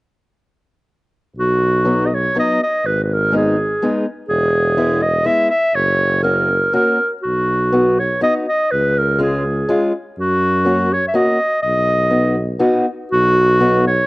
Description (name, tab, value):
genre	alpine folk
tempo	122 BPM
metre	3/4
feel	rubato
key	B major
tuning	A4 = 440 Hz
part	clear clarinet	melody	1.4-14.1 s	F#4 to E5	-16 LUFS	equal	cassette tape
part	mellow tuba	bass	1.4-14.1 s	E1 to F#2	-20 LUFS	equal	none
part	fingerpicked acoustic archtop guitar	accompaniment	1.8-13.8 s	F#3 to F#4	-18 LUFS	left 1 dB	cassette tape
room	light reverb, studio reverb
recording	home recording on cassette, nothing above 11.0 kHz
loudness	-14 LUFS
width	side -20 dB against mid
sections	1.4-13.1 A section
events	none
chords	1.4 B; 2.8 G#m; 4.3 E; 5.8 F#; 7.2 B; 8.7 C#; 10.2 F#; 11.6 B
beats	| 1.36 1.86 2.35 | 2.84 3.33 3.81 | 4.29 4.78 5.27 | 5.75 6.25 6.74 | 7.24 7.74 8.23 | 8.71 9.20 9.68 | 10.16 10.65 11.14 | 11.63 12.12 12.62 | 13.13 13.62